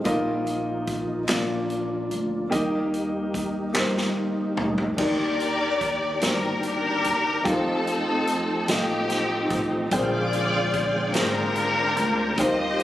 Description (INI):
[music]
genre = slow gospel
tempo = 49 BPM (dotted quarters)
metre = 6/8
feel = straight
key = Eb major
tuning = A4 = 440 Hz
[part]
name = warm grand piano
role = accompaniment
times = 0.0-12.8 s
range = Bb2 to G5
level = -28 LUFS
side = left 1 dB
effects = none
[part]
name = tonewheel organ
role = sustained chords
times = 0.0-12.8 s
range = D3 to G5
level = -29 LUFS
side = right 1 dB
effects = slow rotary speaker, chorus vibrato
[part]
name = upright bass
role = bass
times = 0.0-12.8 s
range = G1 to F2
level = -32 LUFS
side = equal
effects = none
[part]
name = swinging big-band drum kit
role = drums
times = 0.0-12.8 s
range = crash cymbal, hi-hat, kick drum, snare drum, toms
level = -29 LUFS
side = equal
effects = none
[part]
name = group handclap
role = percussion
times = 1.3-4.1 s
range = none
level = -29 LUFS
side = equal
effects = none
[part]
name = warm studio string section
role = melody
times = 5.0-12.8 s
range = C4 to Eb5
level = -24 LUFS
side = left 2 dB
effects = none
[sound]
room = moderate concert hall reverb, RT60 2.3 s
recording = recorded on a phone in the room, club reverb, compression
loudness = -22 LUFS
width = side -13 dB against mid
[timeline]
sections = 0.0-5.0 A section; 5.0-12.8 B section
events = tonewheel organ solo 0.0-5.0; drum fill 3.8-5.0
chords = 0.1 Bbsus4; 1.3 Bb; 2.5 Eb; 5.0 Ebmaj7; 7.5 F9; 9.9 Bb13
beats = | 0.06 1.29 | 2.52 3.75 | 4.99 6.22 | 7.45 8.69 | 9.92 11.15 | 12.38